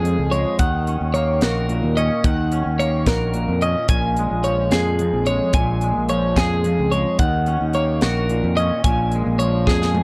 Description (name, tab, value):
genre	math rock and midwest emo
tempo	73 BPM (dotted quarters)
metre	6/8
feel	straight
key	Bb minor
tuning	A4 = 440 Hz
part	twangy electric guitar	accompaniment	0.0-10.0 s	F2 to Ab4	-27 LUFS	equal	analog chorus
part	twelve-string electric guitar	arpeggios	0.0-10.0 s	Ab4 to Ab5	-25 LUFS	equal	spring reverb
part	growling fingered electric bass	bass	0.0-10.0 s	Bb1 to F2	-24 LUFS	equal	overdrive
part	crisp fusion drum kit	drums	0.1-10.0 s	hi-hat, kick drum, snare drum, toms	-23 LUFS	equal	none
room	little or no reverb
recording	dry, close 1970s-style studio recording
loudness	-20 LUFS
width	mono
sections	0.0-10.0 A section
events	drum fill 9.7-10.0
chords	0.0 Bbm7 (rootless); 0.6 Ebm7; 3.9 Bbm7; 7.2 Ebm7; 8.8 Bbm7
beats	| 0.59 1.42 | 2.24 3.07 | 3.89 4.72 | 5.54 6.37 | 7.19 8.02 | 8.85 9.67